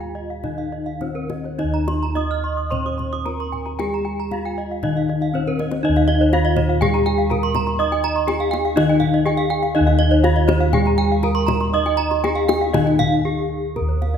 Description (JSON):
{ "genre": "Balinese gamelan", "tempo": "104-123 BPM", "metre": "4/4", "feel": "straight", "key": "Eb slendro", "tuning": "A4 = 436 Hz", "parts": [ { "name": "gamelan-type bronze metallophone", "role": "melody", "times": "0.0-14.2 s", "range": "Db4-45c to Eb5", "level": "-22 LUFS", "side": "left 1 dB", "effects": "none" }, { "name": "gamelan-type bronze metallophone", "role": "accompaniment", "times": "0.0-13.8 s", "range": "Eb3 to Eb4", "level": "-27 LUFS", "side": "left 1 dB", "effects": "none" }, { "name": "gamelan-type bronze metallophone", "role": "arpeggios", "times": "0.0-14.1 s", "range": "Bb4+25c to F6+30c", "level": "-26 LUFS", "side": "right 5 dB", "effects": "none" }, { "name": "gamelan-type bossed gongs", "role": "bass", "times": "0.0-14.2 s", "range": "Eb2 to Eb5", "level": "-22 LUFS", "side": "equal", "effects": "none" }, { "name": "gamelan-type bronze metallophone", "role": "arpeggios", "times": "0.2-14.2 s", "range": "Db5-45c to Eb6", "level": "-26 LUFS", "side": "left 1 dB", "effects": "none" }, { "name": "kendang", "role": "percussion", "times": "0.4-14.2 s", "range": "none", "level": "-27 LUFS", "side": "left 5 dB", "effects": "none" } ], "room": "moderate scoring stage reverb, RT60 1.6 s", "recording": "minimal, uncompressed stereo recording", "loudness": "-17 LUFS", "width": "side -8 dB against mid", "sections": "0.0-5.8 A section; 5.8-13.8 B section", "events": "drum fill 5.3-5.8, 13.2-13.8; break 13.0-13.8", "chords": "none" }